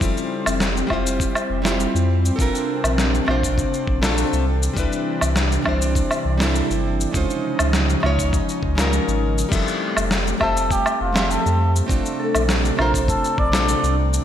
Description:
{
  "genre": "sunset chillout",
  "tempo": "101 BPM",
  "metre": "4/4",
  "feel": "straight",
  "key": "F major",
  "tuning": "A4 = 445 Hz",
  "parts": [
    { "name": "nylon-string guitar", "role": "accompaniment", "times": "0.0-14.0 s", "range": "F3 to E5", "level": "-24 LUFS", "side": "moving between left 5 dB and right 5 dB", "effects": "auto-pan, digital delay" },
    { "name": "airy breathy pad", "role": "sustained chords", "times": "0.0-14.2 s", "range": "C3 to Eb4", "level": "-27 LUFS", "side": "equal", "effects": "chorus" },
    { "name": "warm sub bass", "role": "bass", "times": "0.0-14.2 s", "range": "F1 to F2", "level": "-22 LUFS", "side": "equal", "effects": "tube saturation" },
    { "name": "dusty soul sampler-style drum kit", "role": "drums", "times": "0.0-14.2 s", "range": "crash cymbal, shaker, snare drum, woodblock", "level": "-24 LUFS", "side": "equal", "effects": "gated reverb" },
    { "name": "electronic kick drum", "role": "drums", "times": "0.0-13.5 s", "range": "none", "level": "-24 LUFS", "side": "equal", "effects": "none" },
    { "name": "concert harp", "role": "arpeggios", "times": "9.5-14.2 s", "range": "D4 to A4", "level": "-31 LUFS", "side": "left 2 dB", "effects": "none" },
    { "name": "trumpet with cup mute", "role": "melody", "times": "10.4-14.0 s", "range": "F4 to D5", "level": "-23 LUFS", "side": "equal", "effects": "ping-pong delay" }
  ],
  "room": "moderate plate reverb, RT60 1.7 s, digital ambience",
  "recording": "bright 1980s-style digital production",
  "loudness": "-18 LUFS",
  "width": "side -10 dB against mid",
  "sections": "0.0-14.2 A section",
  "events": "none",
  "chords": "0.0 Fmaj9; 2.4 Bbmaj9; 4.5 Cmaj9; 7.1 Dbmaj9; 9.5 Fmaj9; 11.9 Bbmaj9"
}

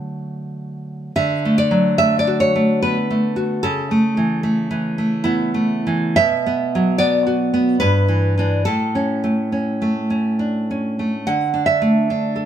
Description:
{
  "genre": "romantic piece for solo classical guitar",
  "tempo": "71 BPM",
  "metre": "3/4",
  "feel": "uneven beats, rubato",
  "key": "D major",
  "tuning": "A4 = 441 Hz",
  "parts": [
    { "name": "nylon-string guitar", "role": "solo", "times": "0.0-12.5 s", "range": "G2 to F#5", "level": "-16 LUFS", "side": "right 1 dB", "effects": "none" }
  ],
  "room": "moderate stone room reverb, RT60 1.1 s",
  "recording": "band playing live in one room",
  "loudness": "-16 LUFS",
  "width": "side -10 dB against mid",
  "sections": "0.0-1.2 A section; 1.2-12.5 B section",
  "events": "none",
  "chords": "0.0 D; 3.6 A/C#; 6.2 Bm; 7.8 Em7/G; 8.7 A; 11.3 D5"
}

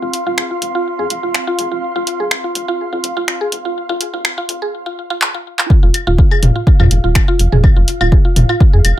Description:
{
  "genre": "minimal techno",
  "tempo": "124 BPM",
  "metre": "4/4",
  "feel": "swing 53% on 16ths",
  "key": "unclear",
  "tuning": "A4 = 439 Hz",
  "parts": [
    { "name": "mallet-like synth pluck", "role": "riff", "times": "0.0-8.8 s", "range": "F4 to Ab4", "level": "-20 LUFS", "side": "equal", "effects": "chorus, sidechain pumping, ping-pong delay" },
    { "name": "rubbery square bass", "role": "bass", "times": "0.0-8.9 s", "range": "Eb1 to F2", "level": "-15 LUFS", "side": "equal", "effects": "sidechain pumping, high-pass filter" },
    { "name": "airy breathy pad", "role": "texture", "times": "0.0-4.7 s", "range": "C4 to C6", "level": "-26 LUFS", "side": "right 2 dB", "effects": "chorus, sidechain pumping" },
    { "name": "flickering grainy texture", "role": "texture", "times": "0.0-9.0 s", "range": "F5", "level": "-28 LUFS", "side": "right 1 dB", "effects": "built-in reverb, sidechain pumping" },
    { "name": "punchy analog drum machine", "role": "drums", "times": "0.1-8.9 s", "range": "finger snaps, handclaps, hi-hat", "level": "-18 LUFS", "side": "equal", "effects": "high-pass filter on hats, high-pass filter on snare, high-pass filter on room" },
    { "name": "electronic kick drum", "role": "drums", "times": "5.7-8.7 s", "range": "none", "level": "-10 LUFS", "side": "equal", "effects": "none" },
    { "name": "electronic claves and toms", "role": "percussion", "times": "5.9-8.9 s", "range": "none", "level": "-17 LUFS", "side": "left 1 dB", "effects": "none" }
  ],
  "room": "light reverb",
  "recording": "high-pass filter",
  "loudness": "-12 LUFS",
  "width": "side -14 dB against mid",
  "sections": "0.0-5.7 A section; 5.7-9.0 B section",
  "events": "build-up 0.0-5.7; filter sweep on synth arpeggio sound 0.0-5.7; drum fill 5.2-5.7; drop 5.7-9.0",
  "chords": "0.0 F5"
}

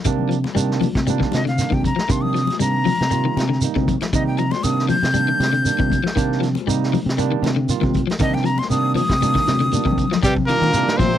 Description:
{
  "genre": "afrobeat",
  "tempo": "118 BPM",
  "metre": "4/4",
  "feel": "straight",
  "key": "C minor",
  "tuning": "A4 = 442 Hz",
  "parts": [
    { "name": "barky tine electric piano", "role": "accompaniment", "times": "0.0-11.2 s", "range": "Eb3 to F4", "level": "-25 LUFS", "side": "right 14 dB", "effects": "overdrive" },
    { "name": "shekere", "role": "percussion", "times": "0.0-11.1 s", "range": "none", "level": "-27 LUFS", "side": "right 3 dB", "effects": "none" },
    { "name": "electric guitar at the edge of break-up", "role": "arpeggios", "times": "0.1-11.2 s", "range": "D3 to G3", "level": "-26 LUFS", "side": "left 7 dB", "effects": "tremolo" },
    { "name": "fingered electric bass", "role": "bass", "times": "0.1-11.2 s", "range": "Bb2 to Eb3", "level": "-21 LUFS", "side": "equal", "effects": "none" },
    { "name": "vintage drum kit", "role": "drums", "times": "0.1-11.2 s", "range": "hi-hat, kick drum, snare drum", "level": "-25 LUFS", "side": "equal", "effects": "none" },
    { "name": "congas", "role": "percussion", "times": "0.2-11.1 s", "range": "none", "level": "-27 LUFS", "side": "left 9 dB", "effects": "none" },
    { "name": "breathy bright jazz flute", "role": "melody", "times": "1.3-10.2 s", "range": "Eb5 to G6", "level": "-22 LUFS", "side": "left 2 dB", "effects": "none" },
    { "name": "bright trumpet", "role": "melody", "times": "10.2-11.2 s", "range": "G4 to C5", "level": "-19 LUFS", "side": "left 1 dB", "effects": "none" },
    { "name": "muted trombone section", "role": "second line", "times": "10.2-11.2 s", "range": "G2 to C3", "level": "-27 LUFS", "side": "right 2 dB", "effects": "none" },
    { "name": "raspy tenor saxophone", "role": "second line", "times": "10.2-11.2 s", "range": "G3 to C4", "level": "-26 LUFS", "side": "right 4 dB", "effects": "none" }
  ],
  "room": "little or no reverb",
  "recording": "dry, close 1970s-style studio recording",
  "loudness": "-17 LUFS",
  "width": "side -11 dB against mid",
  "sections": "0.0-10.2 A section",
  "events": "flute solo 0.0-10.2; drum fill 9.5-10.2",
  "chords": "0.0 Cm9; 10.2 Cm7"
}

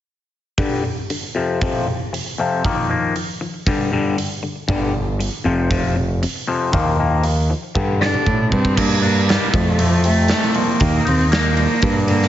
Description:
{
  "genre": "quiet-loud alternative rock",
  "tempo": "118 BPM",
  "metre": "4/4",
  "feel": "straight",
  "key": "G minor",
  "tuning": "A4 = 440 Hz",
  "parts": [
    { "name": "twangy electric guitar", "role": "arpeggios", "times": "0.6-12.3 s", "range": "F2 to Eb4", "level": "-21 LUFS", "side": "left 4 dB", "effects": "phaser, slapback echo" },
    { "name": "big rock drum kit", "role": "drums", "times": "0.6-12.3 s", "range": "crash cymbal, hi-hat, kick drum, snare drum, toms", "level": "-22 LUFS", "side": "right 1 dB", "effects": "none" },
    { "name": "growling picked electric bass", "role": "bass", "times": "4.7-12.3 s", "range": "F1 to A2", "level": "-19 LUFS", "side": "right 1 dB", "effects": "overdrive" },
    { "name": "rich cello", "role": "melody", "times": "8.0-12.3 s", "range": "F3 to D4", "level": "-20 LUFS", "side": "right 2 dB", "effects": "slapback echo" }
  ],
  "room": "light reverb",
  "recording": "heavily compressed radio sound, multiband compression, nothing above 7.7 kHz",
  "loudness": "-16 LUFS",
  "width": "side -12 dB against mid",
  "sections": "0.6-8.8 A section; 8.8-12.3 B section",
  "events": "drum fill 7.8-8.8",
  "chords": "0.6 G5; 1.4 F5; 2.6 Ebsus2; 3.7 G5; 5.5 F5; 6.7 Ebsus2; 7.8 G5; 8.8 Gm; 9.5 F; 10.8 Ebsus2"
}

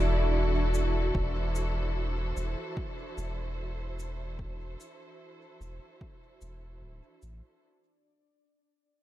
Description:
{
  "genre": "ambient dub",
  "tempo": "74 BPM",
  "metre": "4/4",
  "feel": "straight",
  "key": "unclear",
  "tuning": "A4 = 442 Hz",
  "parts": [
    { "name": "warm studio string section", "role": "sustained chords", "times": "0.0-7.6 s", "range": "E3 to D5", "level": "-35 LUFS", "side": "equal", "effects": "none" },
    { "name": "soft dub sub bass", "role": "bass", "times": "0.0-7.4 s", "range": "D1 to A1", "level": "-31 LUFS", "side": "equal", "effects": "none" },
    { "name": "bubbling stepped-filter texture", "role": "texture", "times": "0.0-7.6 s", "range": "D4 to D5", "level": "-40 LUFS", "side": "left 1 dB", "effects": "chorus, built-in reverb" },
    { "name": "cabasa", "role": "drums", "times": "0.7-7.4 s", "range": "none", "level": "-48 LUFS", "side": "left 2 dB", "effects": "none" },
    { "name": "electronic kick drum", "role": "drums", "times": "1.1-6.2 s", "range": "none", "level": "-37 LUFS", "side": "equal", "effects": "overdrive" }
  ],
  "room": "light reverb, small room ambience",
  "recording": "none",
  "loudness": "-29 LUFS",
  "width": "side -14 dB against mid",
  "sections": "0.0-7.6 A section",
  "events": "fade-out 0.0-7.6",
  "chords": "0.0 D/E"
}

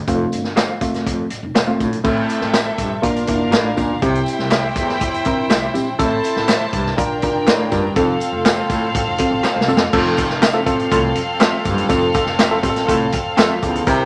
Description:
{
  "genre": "uptempo 1960s-style soul",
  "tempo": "122 BPM",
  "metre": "4/4",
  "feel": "straight",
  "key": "unclear",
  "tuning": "A4 = 444 Hz",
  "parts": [
    { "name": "breathy baritone saxophone", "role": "riff", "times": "0.0-14.1 s", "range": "E2 to C3", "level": "-26 LUFS", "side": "equal", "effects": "none" },
    { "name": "barky reed electric piano", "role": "accompaniment", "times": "0.1-14.1 s", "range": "A3 to Bb4", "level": "-22 LUFS", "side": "equal", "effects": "overdrive, phaser" },
    { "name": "upright bass", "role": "bass", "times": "0.1-14.1 s", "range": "E1 to F2", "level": "-30 LUFS", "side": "equal", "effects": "none" },
    { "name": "vintage drum kit", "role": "drums", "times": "0.1-14.0 s", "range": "crash cymbal, hi-hat, kick drum, snare drum", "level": "-22 LUFS", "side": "equal", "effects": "none" },
    { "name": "tambourine and handclaps", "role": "percussion", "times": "0.1-14.0 s", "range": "none", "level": "-32 LUFS", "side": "equal", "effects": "none" },
    { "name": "electric guitar through a small old amp", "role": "stabs", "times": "0.6-13.5 s", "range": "C4 to F5", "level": "-26 LUFS", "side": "equal", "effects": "tremolo" },
    { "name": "bright saxophone section", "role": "second line", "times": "2.0-13.8 s", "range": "A3 to C5", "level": "-28 LUFS", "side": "equal", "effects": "none" },
    { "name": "clear studio violin section", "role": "second line", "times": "2.0-14.1 s", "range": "C4 to A5", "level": "-26 LUFS", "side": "equal", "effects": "none" }
  ],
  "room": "moderate studio reverb, RT60 0.8 s",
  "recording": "none",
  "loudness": "-18 LUFS",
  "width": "mono",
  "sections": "0.0-2.0 A section; 2.0-9.9 B section; 9.9-14.1 C section",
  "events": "drum fill 9.4-9.9",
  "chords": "0.1 F; 2.0 Am; 3.0 Bb; 4.0 C; 6.0 Am; 7.0 Bb; 8.0 F; 9.9 Fmaj7"
}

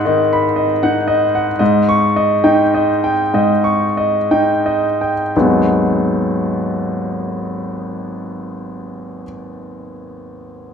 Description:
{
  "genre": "neoclassical minimalist piano",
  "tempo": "56-80 BPM",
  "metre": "4/4",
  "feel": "rubato",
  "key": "G# minor",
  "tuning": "A4 = 440 Hz",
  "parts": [
    { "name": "bright grand piano", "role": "solo", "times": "0.0-10.7 s", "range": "G#1 to C#6", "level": "-14 LUFS", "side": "equal", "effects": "none" }
  ],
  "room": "moderate concert hall reverb, RT60 1.9 s",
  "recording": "minimal, uncompressed stereo recording",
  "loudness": "-13 LUFS",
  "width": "side -7 dB against mid",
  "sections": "0.0-5.3 A section; 5.3-9.6 B section",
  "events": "slowing down 0.0-5.3",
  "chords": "0.0 G#m7; 1.6 D#7/G#; 5.3 G#m7"
}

